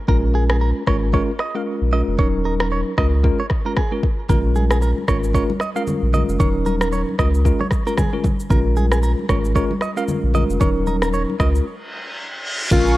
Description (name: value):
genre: afrobeats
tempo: 114 BPM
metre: 4/4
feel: swing 58% on 16ths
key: Bb minor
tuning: A4 = 444 Hz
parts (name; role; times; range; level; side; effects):
- downlifter and reverse cymbal; sound effects; 0.0-0.1, 11.8-12.7 s; none; -26 LUFS; equal; none
- bell-like tine electric piano; accompaniment; 0.1-13.0 s; Gb3 to Bb4; -22 LUFS; left 1 dB; medium stereo tremolo
- direct-recorded clean electric guitar; riff; 0.1-11.5 s; Ab4 to F5; -27 LUFS; right 4 dB; tape echo
- warm sub bass; bass; 0.1-13.0 s; Eb1 to Db2; -19 LUFS; equal; none
- afro-pop drum kit; drums; 0.1-13.0 s; crash cymbal, kick drum, rim click, shaker; -21 LUFS; equal; none
- congas; percussion; 4.3-12.9 s; none; -27 LUFS; left 1 dB; none
- breathy alto saxophone; melody; 12.7-13.0 s; F4; -18 LUFS; left 2 dB; none
- warm analog pad; sustained chords; 12.7-13.0 s; Bb4 to Db6; -24 LUFS; right 1 dB; chorus, sidechain pumping
room: digital ambience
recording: worn, warbling old tape, cassette tape, warbly pitch drift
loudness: -17 LUFS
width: side -17 dB against mid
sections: 0.0-12.7 A section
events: break 0.0-4.3, 11.7-12.7; reverse cymbal 11.8-12.7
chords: 0.1 Bbm7; 2.2 Ebm7; 3.0 Db6; 4.3 Bbm7; 6.4 Ebm7; 7.2 Db6; 8.5 Bbm7; 10.6 Ebm7; 11.4 Db6